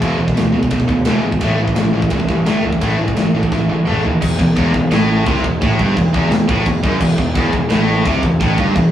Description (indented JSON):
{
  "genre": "heavy metal",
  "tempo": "172 BPM",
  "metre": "4/4",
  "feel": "straight",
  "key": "E minor",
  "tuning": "A4 = 441 Hz",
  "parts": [
    { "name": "high-gain distorted guitar", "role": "riff", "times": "0.0-8.9 s", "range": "E2 to A3", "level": "-19 LUFS", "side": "right 2 dB", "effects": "distortion" },
    { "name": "tight distorted guitar", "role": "riff", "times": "0.0-8.9 s", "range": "E2 to A3", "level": "-20 LUFS", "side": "left 3 dB", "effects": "distortion" },
    { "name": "fuzz picked electric bass", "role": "bass", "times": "0.0-8.9 s", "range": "E1 to G2", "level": "-20 LUFS", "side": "equal", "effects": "overdrive" },
    { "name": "big rock drum kit", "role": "drums", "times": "0.0-8.8 s", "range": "china cymbal, crash cymbal, kick drum, ride cymbal, snare drum, toms", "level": "-18 LUFS", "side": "equal", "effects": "none" },
    { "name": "overdriven electric guitar", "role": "riff", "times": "4.2-8.9 s", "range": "E2 to C3", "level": "-23 LUFS", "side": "equal", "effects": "none" }
  ],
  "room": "moderate studio reverb, RT60 0.6 s",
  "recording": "rough rehearsal-room recording, tube saturation, small room reverb",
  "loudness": "-13 LUFS",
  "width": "side -11 dB against mid",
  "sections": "0.0-4.2 A section; 4.2-8.9 B section",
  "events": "drum fill 3.5-4.2; half time 4.2-8.9",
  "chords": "0.0 E5; 1.4 A5; 4.2 Em",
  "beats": "| 0.01 0.36 0.71 1.06 | 1.41 1.76 2.11 2.46 | 2.81 3.16 3.51 3.86 | 4.21 4.56 4.91 5.26 | 5.61 5.96 6.31 6.66 | 7.01 7.36 7.71 8.05 | 8.40 8.75"
}